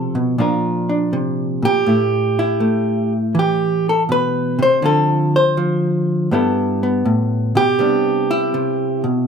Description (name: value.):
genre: solo jazz.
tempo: 81 BPM.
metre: 4/4.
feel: swing 68% on 8ths.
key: C major.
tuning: A4 = 445 Hz.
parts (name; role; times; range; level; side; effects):
hollow-body jazz guitar; solo; 0.0-9.3 s; G2 to C5; -15 LUFS; equal; none.
room: moderate club reverb, RT60 0.7 s.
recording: minimal, uncompressed stereo recording.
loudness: -15 LUFS.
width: side -6 dB against mid.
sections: 0.0-9.3 A section.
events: none.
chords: 0.4 Bbadd9; 1.9 Am7; 4.8 Dm7; 6.3 G69; 7.8 Cmaj9.